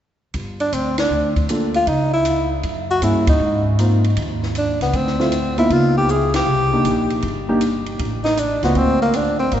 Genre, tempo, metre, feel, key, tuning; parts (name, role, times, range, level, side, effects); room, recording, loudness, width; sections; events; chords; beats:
jazz, small-group swing and bop; 157 BPM; 4/4; swing 67% on 8ths; G minor; A4 = 439 Hz
upright bass; bass; 0.3-9.6 s; G1 to Ab2; -22 LUFS; equal
compact cocktail drum kit; drums; 0.3-9.6 s; hi-hat, kick drum, ride cymbal, snare drum; -25 LUFS; equal
mellow tenor saxophone; melody; 0.6-9.6 s; Bb3 to G#4; -19 LUFS; equal
warm baby grand piano; accompaniment; 1.5-9.1 s; A3 to A4; -22 LUFS; equal
wet cathedral reverb, RT60 4.6 s; recorded in a church or concert hall, nothing above 7.9 kHz; -16 LUFS; side -10 dB against mid
0.3-9.6 A section
band accent 0.9, 3.2, 6.3; drum fill 6.1-6.5
0.3 Gm9; 1.9 C#m; 2.6 F#9; 3.4 Ab6; 4.9 Dm7; 5.7 C#13; 6.5 Cm9; 8.0 Adim7; 8.8 D7alt
| 0.34 0.72 1.11 1.49 | 1.87 2.26 2.64 3.02 | 3.40 3.79 4.17 4.55 | 4.93 5.32 5.70 6.08 | 6.46 6.85 7.23 7.61 | 7.99 8.37 8.76 9.14 | 9.52